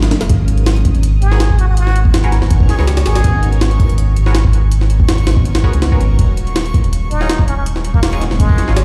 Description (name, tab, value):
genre	drum and bass, jungle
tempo	163 BPM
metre	4/4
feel	straight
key	G# minor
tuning	A4 = 439 Hz
part	soft string machine	sustained chords	0.0-8.8 s	F#3 to A#4	-28 LUFS	equal	phaser, ensemble chorus
part	soft dub sub bass	bass	0.0-8.8 s	D#1 to C#2	-16 LUFS	equal	tube saturation
part	jungle sampler-style drum kit	drums	0.0-8.8 s	hi-hat, kick drum, snare drum	-17 LUFS	equal	overdrive, studio reverb
part	backwards swelling texture	texture	0.0-8.8 s	C#6 to D#6	-35 LUFS	equal	built-in reverb
part	trumpet with plunger mute	melody	1.2-3.6, 7.1-8.8 s	G#3 to G#4	-26 LUFS	equal	vintage 12-bit sampler grit, dub echo
part	band-passed chord stab	stabs	1.3-8.8 s	F#3 to C#5	-29 LUFS	equal	phaser, dub echo
room	digital ambience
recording	played on a big sound system in a bare room, large studio reverb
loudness	-13 LUFS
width	mono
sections	0.0-8.8 A section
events	none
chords	0.3 G#m11; 6.2 D#m11